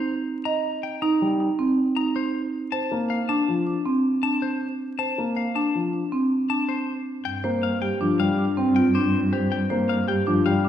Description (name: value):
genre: classical, minimalist pattern music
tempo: 159 BPM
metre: 6/4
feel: straight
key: G minor from 7.3 s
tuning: A4 = 440 Hz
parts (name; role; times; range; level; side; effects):
- clean electric guitar; melody; 0.0-10.7 s; G4 to Bb5; -30 LUFS; left 7 dB; none
- marimba with medium hard mallets; arpeggios; 0.5-10.7 s; C4 to Eb5; -23 LUFS; right 1 dB; none
- dark baby grand piano; accompaniment; 1.2-10.7 s; F3 to C4; -26 LUFS; left 1 dB; none
- rich cello; bass; 7.3-10.7 s; G2; -26 LUFS; equal; none
room: wet scoring stage reverb, RT60 1.6 s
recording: heard from further back in the room, vinyl crackle, nothing above 10.9 kHz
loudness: -21 LUFS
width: side -10 dB against mid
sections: 0.0-7.3 A section; 7.3-10.7 B section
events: none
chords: 0.0 Eb5; 2.7 Bbmaj7; 7.3 Gm7